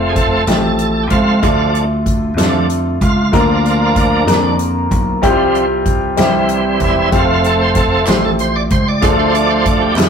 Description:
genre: slow gospel.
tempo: 63 BPM (dotted quarters).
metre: 6/8.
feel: straight.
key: F major.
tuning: A4 = 441 Hz.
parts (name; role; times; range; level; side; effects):
clear concert grand piano; accompaniment; 0.0-10.1 s; C3 to Bb4; -17 LUFS; left 2 dB; none.
bright tonewheel organ; sustained chords; 0.0-10.1 s; E3 to D5; -16 LUFS; right 2 dB; slow rotary speaker, overdrive.
dry thumbed slap bass; bass; 0.0-10.1 s; E1 to F2; -18 LUFS; equal; none.
natural country drum kit; drums; 0.2-10.1 s; hi-hat, kick drum, snare drum; -18 LUFS; equal; none.
group handclap; percussion; 8.1-10.1 s; none; -24 LUFS; right 2 dB; none.
room: moderate stone room reverb, RT60 0.9 s.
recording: rough rehearsal-room recording.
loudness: -11 LUFS.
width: side -7 dB against mid.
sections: 0.0-10.1 A section.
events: tonewheel organ solo 0.0-10.1.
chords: 0.0 F; 1.4 Dm; 3.3 Bb/D; 5.2 Csus4; 6.2 C; 7.1 F; 9.0 Dm.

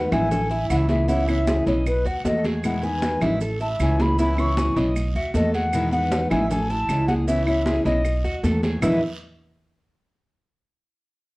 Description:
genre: latin, Cuban son and guajira.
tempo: 155 BPM.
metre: 4/4.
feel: straight.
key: E major.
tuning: A4 = 440 Hz.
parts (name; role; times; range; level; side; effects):
mellow hollow jazz flute; melody; 0.0-9.0 s; B4 to C#6; -26 LUFS; left 1 dB; none.
nylon-string guitar; accompaniment; 0.0-9.0 s; E2 to F#4; -25 LUFS; left 1 dB; none.
Cuban tres; arpeggios; 0.0-9.0 s; E4 to D#5; -28 LUFS; right 2 dB; none.
upright bass; bass; 0.0-9.0 s; A1 to E2; -24 LUFS; equal; none.
claves; percussion; 0.1-8.9 s; none; -36 LUFS; right 2 dB; none.
congas; percussion; 0.1-8.9 s; none; -28 LUFS; equal; none.
guiro; percussion; 0.1-8.9 s; none; -42 LUFS; right 3 dB; none.
maracas; percussion; 0.1-8.9 s; none; -46 LUFS; right 7 dB; none.
room: moderate large studio reverb, RT60 0.8 s.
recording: worn, warbling old tape, cassette tape, warbly pitch drift.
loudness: -19 LUFS.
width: side -23 dB against mid.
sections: 0.0-8.8 A section; 8.8-10.4 B section.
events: none.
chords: 0.3 Amaj7; 1.1 C#m7; 1.9 B7; 2.6 Emaj7; 3.4 Amaj7; 4.2 C#m7; 5.0 B7; 5.7 Emaj7; 6.5 Amaj7; 7.3 C#m7; 8.1 B7; 8.8 Emaj7(no3).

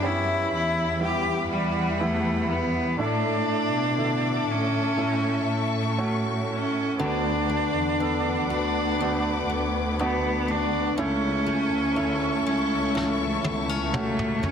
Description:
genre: pop ballad.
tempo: 61 BPM.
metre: 4/4.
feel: straight.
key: D major.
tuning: A4 = 444 Hz.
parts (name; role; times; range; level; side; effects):
clear cello; melody; 0.0-14.5 s; G3 to G4; -26 LUFS; left 1 dB; none.
clear grand piano; accompaniment; 0.0-14.5 s; A2 to A4; -30 LUFS; right 3 dB; none.
warm studio string section; sustained chords; 0.0-14.5 s; E4 to D6; -32 LUFS; left 3 dB; none.
warm chamber cello section; bass; 0.0-14.5 s; C#2 to B2; -29 LUFS; equal; none.
picked steel-string acoustic guitar; arpeggios; 7.0-14.5 s; C#3 to F#4; -33 LUFS; left 6 dB; none.
vintage brush drum kit; drums; 13.0-14.5 s; snare drum, toms; -32 LUFS; equal; none.
room: light reverb, small room ambience.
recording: dense, heavily limited modern master.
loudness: -22 LUFS.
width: side -7 dB against mid.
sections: 0.0-7.0 A section; 7.0-14.5 B section.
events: drum fill 13.0-14.5.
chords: 0.0 Em; 3.0 Asus4; 5.0 A; 7.0 D6; 11.0 A/C#.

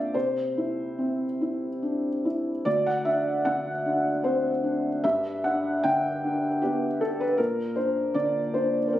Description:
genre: neoclassical minimalist piano.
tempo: 70-80 BPM.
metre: 3/4.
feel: rubato.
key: unclear.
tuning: A4 = 439 Hz.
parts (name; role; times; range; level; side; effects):
felt-muted upright piano; solo; 0.0-9.0 s; D2 to G5; -24 LUFS; equal; none.
room: light reverb.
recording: recorded on a phone in the room, studio reverb.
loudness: -24 LUFS.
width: side -13 dB against mid.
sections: 0.0-9.0 A section.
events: none.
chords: 0.1 Cadd9; 2.7 D7; 5.0 G; 7.4 Bbadd9.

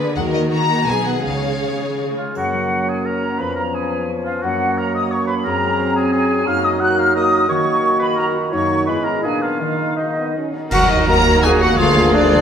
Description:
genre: classical, dramatic, fast romantic movement for symphony orchestra.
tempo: 159-179 BPM.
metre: 3/4.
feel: rubato.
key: F# major, Eb minor from 6.5 s.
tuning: A4 = 443 Hz.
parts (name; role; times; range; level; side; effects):
warm symphonic violin section; second line; 0.0-2.2, 10.7-12.4 s; Bb3 to C#5; -24 LUFS; left 2 dB; none.
warm symphonic viola section; accompaniment; 0.0-2.2, 10.7-12.4 s; Eb3 to Ab4; -25 LUFS; right 2 dB; none.
concert harp; arpeggios; 0.0-12.4 s; E#2 to Eb5; -26 LUFS; left 4 dB; none.
warm symphonic cello section; bass; 0.0-2.2, 10.7-12.4 s; D2 to D#3; -23 LUFS; right 2 dB; none.
warm symphonic violin section; melody; 0.2-2.0, 10.7-12.4 s; D5 to A#5; -20 LUFS; left 4 dB; none.
warm symphonic double bass section; bass; 0.2-1.6, 10.7-12.4 s; B1 to D#2; -23 LUFS; right 3 dB; none.
flute section; second line; 2.2-12.4 s; D5 to Gb6; -22 LUFS; left 1 dB; none.
warm oboe; second line; 2.2-12.4 s; Eb4 to Gb5; -23 LUFS; right 2 dB; none.
warm clarinet; second line; 2.4-12.4 s; A#3 to Bb4; -22 LUFS; right 1 dB; none.
warm bassoon; accompaniment; 2.4-10.5 s; Eb3 to Bb3; -24 LUFS; right 3 dB; none.
dark French horn section; sustained chords; 2.4-12.4 s; Bb3 to B4; -24 LUFS; left 2 dB; none.
triangle, cymbal swell, clash cymbals and concert bass drum; percussion; 2.4-3.0, 8.5-11.4 s; none; -24 LUFS; equal; none.
room: wet scoring stage reverb, RT60 2.1 s.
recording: none.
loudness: -15 LUFS.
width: side -8 dB against mid.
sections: 0.0-2.4 A section; 2.4-10.7 B section; 10.7-12.4 A section.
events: band accent 10.7-11.1.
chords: 0.2 D#m; 0.9 G#m/B; 1.2 C#; 2.4 F#; 3.4 C#7/E#; 4.4 F#; 5.5 G#7/F#; 6.5 Ebm/Gb; 7.5 Ebm; 8.5 Ebm/Gb; 8.9 E/G#; 9.2 Bb7b9; 9.6 Ebm; 11.8 Bb7/D.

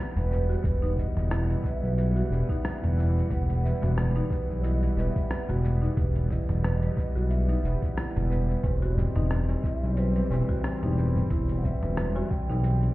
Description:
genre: organic downtempo.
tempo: 90 BPM.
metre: 4/4.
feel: swing 56% on 16ths.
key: E harmonic minor.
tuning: A4 = 441 Hz.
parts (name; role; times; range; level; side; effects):
breathy mellow low ney; melody; 0.0-12.9 s; B4 to G5; -40 LUFS; right 1 dB; ping-pong delay.
pedal harmonium; accompaniment; 0.0-12.9 s; E3 to C4; -37 LUFS; left 1 dB; sidechain pumping, ping-pong delay.
bowed-like drone; sustained chords; 0.0-12.9 s; E3 to F#5; -36 LUFS; equal; built-in reverb, sidechain pumping.
buzzing marimba with hard mallets; arpeggios; 0.0-12.6 s; D#4 to B4; -36 LUFS; right 2 dB; ping-pong delay.
smooth synth bass; bass; 0.2-12.9 s; E1 to B1; -25 LUFS; equal; tube saturation, sidechain pumping.
dusty soul sampler-style drum kit; drums; 0.2-12.9 s; hi-hat, rim click, shaker, toms; -33 LUFS; equal; studio reverb.
electronic kick drum; drums; 0.6-12.5 s; none; -28 LUFS; equal; studio reverb.
tabla; percussion; 8.6-12.6 s; none; -34 LUFS; left 1 dB; none.
room: light reverb, small room ambience.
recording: heard muffled through a wall, stone room reverb, EQ.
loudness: -24 LUFS.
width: side -18 dB against mid.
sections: 0.0-12.9 A section.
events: none.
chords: 0.0 Em; 8.6 C/E.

